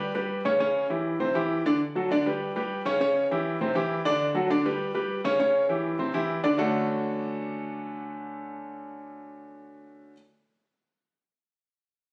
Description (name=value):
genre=latin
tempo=201 BPM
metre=4/4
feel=straight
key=D major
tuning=A4 = 441 Hz
part: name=warm baby grand piano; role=solo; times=0.0-10.1 s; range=C3 to D5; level=-28 LUFS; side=equal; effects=none
room=moderate large studio reverb, RT60 1.1 s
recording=recorded on a phone in the room, studio reverb, compression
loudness=-27 LUFS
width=mono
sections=0.0-1.8 A section; 1.8-6.6 B section; 6.6-9.0 C section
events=none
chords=0.0 G; 0.6 C#dim; 1.2 C; 1.8 D; 2.4 G; 3.0 C#dim; 3.6 C; 4.2 D; 4.8 G; 5.4 C#dim; 6.0 C; 6.6 Dmaj7